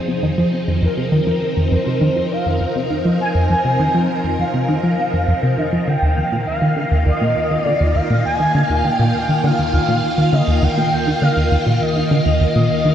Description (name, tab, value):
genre	ambient, sequencer-driven space music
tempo	101 BPM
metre	4/4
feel	straight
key	unclear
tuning	A4 = 442 Hz
part	phased string machine	sustained chords	0.0-12.9 s	Eb3 to F5	-21 LUFS	equal	ensemble chorus, phaser
part	plucky analog bass	riff	0.1-12.9 s	Eb2 to F3	-17 LUFS	equal	ensemble chorus, analog delay
part	expressive synth lead	melody	0.8-12.9 s	Bb4 to Ab5	-21 LUFS	equal	ensemble chorus, analog delay
room	wet huge ambient reverb, RT60 8.0 s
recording	none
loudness	-15 LUFS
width	side -10 dB against mid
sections	0.0-12.9 A section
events	none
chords	0.0 Fm7; 5.9 Ebsus2